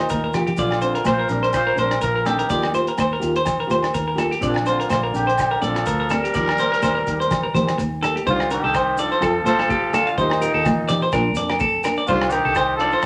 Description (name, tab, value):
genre	highlife guitar band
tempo	125 BPM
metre	4/4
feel	swing 54% on 16ths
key	Bb major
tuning	A4 = 442 Hz
part	growling trumpet	melody	0.0-13.1 s	D4 to C5	-25 LUFS	equal	none
part	raspy tenor saxophone	second line	0.0-13.1 s	Bb2 to G3	-32 LUFS	equal	none
part	semi-hollow electric guitar	arpeggios	0.0-13.0 s	G4 to F5	-24 LUFS	equal	none
part	fingered electric bass	bass	0.0-13.1 s	Bb1 to F2	-31 LUFS	equal	none
part	cloth-damped thuddy drum kit	drums	0.1-13.1 s	hi-hat, kick drum, rim click	-33 LUFS	equal	none
part	congas	percussion	0.1-12.6 s	none	-29 LUFS	equal	none
part	maracas	percussion	0.1-13.1 s	none	-46 LUFS	equal	none
part	nylon-string guitar	accompaniment	0.3-13.0 s	F3 to A4	-30 LUFS	equal	none
part	agogo bells	percussion	0.3-13.1 s	none	-31 LUFS	equal	none
room	wet large studio reverb, RT60 0.8 s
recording	none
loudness	-20 LUFS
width	mono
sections	0.0-8.3 A section; 8.3-13.1 B section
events	drum fill 0.2-0.6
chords	0.0 Ebadd9; 0.6 Bbadd9; 2.5 Ebadd9; 4.4 Bbadd9; 6.3 Eb; 8.3 Cmadd9; 9.2 F; 10.2 Eb; 11.1 Bb; 12.1 Cmadd9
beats	0.11 | 0.59 1.07 1.55 2.03 | 2.50 2.98 3.46 3.94 | 4.42 4.90 5.38 5.86 | 6.34 6.82 7.30 7.78 | 8.26 8.73 9.21 9.69 | 10.17 10.65 11.12 11.60 | 12.08 12.56 13.03